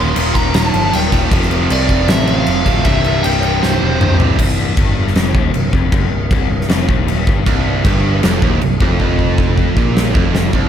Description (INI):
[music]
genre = hard rock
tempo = 156 BPM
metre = 4/4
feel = straight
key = unclear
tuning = A4 = 440 Hz
[part]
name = lead guitar through a small cranked amp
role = melody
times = 0.0-4.2 s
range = C5 to C6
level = -20 LUFS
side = equal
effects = overdrive
[part]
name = distorted electric guitar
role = riff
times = 0.0-10.7 s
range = C2 to F3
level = -21 LUFS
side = left 9 dB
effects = distortion
[part]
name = tight distorted guitar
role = riff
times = 0.0-4.4, 7.5-10.7 s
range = C2 to F3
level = -19 LUFS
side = right 9 dB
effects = distortion, slapback echo
[part]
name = modern bright picked electric bass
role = bass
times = 0.0-10.7 s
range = C1 to C2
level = -18 LUFS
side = equal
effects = none
[part]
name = huge arena drum kit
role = drums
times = 0.2-10.6 s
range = crash cymbal, kick drum, snare drum, toms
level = -15 LUFS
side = equal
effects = none
[sound]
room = light reverb, small room reverb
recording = none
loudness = -12 LUFS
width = side -9 dB against mid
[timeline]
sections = 0.0-4.4 A section; 4.4-10.5 B section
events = drum fill 3.6-4.4, 9.0-10.5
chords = 0.0 Eb; 1.3 F; 2.9 C; 4.4 C5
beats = 0.16 0.55 0.93 | 1.31 1.70 2.08 2.47 | 2.85 3.23 3.62 4.00 | 4.39 4.77 5.16 5.54 | 5.92 6.31 6.69 7.08 | 7.46 7.85 8.23 8.62 | 9.00 9.38 9.77 10.15 | 10.54